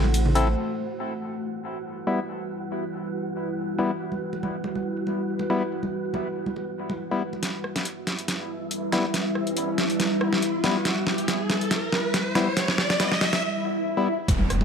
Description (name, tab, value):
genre	deep dubstep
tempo	140 BPM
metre	4/4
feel	swing 54% on 16ths, half-time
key	E minor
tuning	A4 = 441 Hz
part	deep dark ambient pad	sustained chords	0.0-14.6 s	G3 to C5	-30 LUFS	equal	chorus, built-in reverb
part	soft dub sub bass	bass	0.0-0.6, 14.3-14.6 s	E1 to A1	-23 LUFS	equal	none
part	congas	percussion	0.0-0.6, 4.1-7.4, 14.3-14.6 s	none	-32 LUFS	right 1 dB	dub echo
part	wind-like tuned noise texture	texture	0.0-13.4 s	E4 to F#4	-34 LUFS	right 5 dB	built-in reverb
part	dubstep drum kit	drums	0.1-0.4, 7.4-14.6 s	hi-hat, ride cymbal, rim click, snare drum	-26 LUFS	equal	overdrive, low-pass filter on hats, low-pass filter on cymbals, low-pass filter on snare
part	percussive organ stab	stabs	0.4-14.1 s	G3 to A4	-29 LUFS	left 4 dB	chorus, dub echo
part	riser, swell and impact	sound effects	8.3-14.6 s	none	-28 LUFS	equal	none
part	electronic kick drum	drums	14.3-14.4 s	none	-22 LUFS	equal	overdrive
room	moderate echo chamber reverb, RT60 1.5 s, digital ambience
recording	dry, gritty hardware recording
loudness	-24 LUFS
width	side -6 dB against mid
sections	0.6-7.4 A section; 7.4-14.3 B section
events	build-up 7.4-14.3; drum fill 7.4-13.4; filter sweep on synth stab 7.4-14.3; riser 8.3-13.4; break 13.4-14.3; swell 13.4-14.3; impact 14.3-14.6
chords	0.0 Am; 0.6 Em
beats	0.14 | 0.57 1.00 1.43 1.86 | 2.28 2.71 3.14 3.57 | 4.00 4.43 4.86 5.28 | 5.71 6.14 6.57 7.00 | 7.43 7.86 8.28 8.71 | 9.14 9.57 10.00 10.43 | 10.86 11.28 11.71 12.14 | 12.57 13.00 13.43 13.86 | 14.28